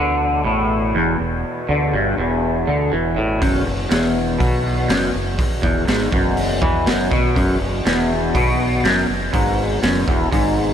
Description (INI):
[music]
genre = psychedelic rock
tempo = 122 BPM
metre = 4/4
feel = straight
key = unclear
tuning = A4 = 437 Hz
[part]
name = twangy electric guitar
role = riff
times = 0.0-10.7 s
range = E2 to E3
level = -18 LUFS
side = equal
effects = phaser, double-tracked left and right
[part]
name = growling fingered electric bass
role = bass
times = 0.0-10.7 s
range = E1 to E2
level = -24 LUFS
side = equal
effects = overdrive
[part]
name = hand-pumped harmonium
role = drone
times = 0.0-10.7 s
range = E2 to B2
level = -27 LUFS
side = left 1 dB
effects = none
[part]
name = raw garage drum kit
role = drums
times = 3.4-10.4 s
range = hi-hat, kick drum, snare drum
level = -21 LUFS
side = equal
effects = none
[sound]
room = moderate huge ambient reverb, RT60 4.0 s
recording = dreamy mix soaked in reverb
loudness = -16 LUFS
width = side -8 dB against mid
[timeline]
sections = 0.0-10.7 A section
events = none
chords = 0.0 E5; 3.4 F#sus2/E